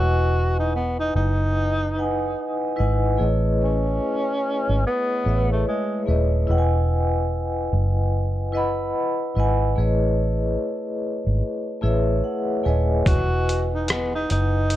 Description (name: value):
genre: lo-fi hip hop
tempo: 73 BPM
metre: 4/4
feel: swing 61% on 16ths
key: E major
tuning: A4 = 441 Hz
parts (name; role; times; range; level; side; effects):
- breathy tenor saxophone; melody; 0.0-6.0, 13.1-14.8 s; G#3 to F#4; -25 LUFS; equal; low-pass filter, analog delay
- vibraphone with soft mallets; accompaniment; 0.0-14.8 s; A3 to B5; -24 LUFS; left 1 dB; low-pass filter
- vintage muted fingered electric bass; bass; 0.0-14.8 s; D#1 to A1; -22 LUFS; equal; none
- trip hop sampler-style drum kit; drums; 13.1-14.8 s; hi-hat, kick drum, rim click; -23 LUFS; equal; none
room: light reverb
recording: dark, warm production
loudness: -20 LUFS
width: side -14 dB against mid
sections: 0.0-14.8 A section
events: vibraphone fill 11.4-13.1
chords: 0.0 Emaj9; 3.2 Amaj9#11; 6.5 Emaj9; 9.8 Amaj9#11; 13.1 Emaj9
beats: 0.73 1.55 2.38 | 3.20 4.02 4.84 5.66 | 6.49 7.31 8.13 8.95 | 9.77 10.60 11.42 12.24 | 13.06 13.88 14.71